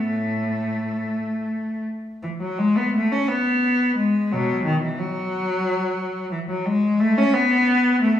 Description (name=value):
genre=classical, baroque-style suite movement for unaccompanied cello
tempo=78-90 BPM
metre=3/4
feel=rubato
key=unclear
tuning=A4 = 442 Hz
part: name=rich cello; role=solo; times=0.0-8.2 s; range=A2 to C#4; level=-19 LUFS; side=left 1 dB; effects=none
room=wet recital hall reverb, RT60 1.6 s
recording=studio ambience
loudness=-19 LUFS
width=side -10 dB against mid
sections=0.0-2.2 A section; 2.2-8.2 A section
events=none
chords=none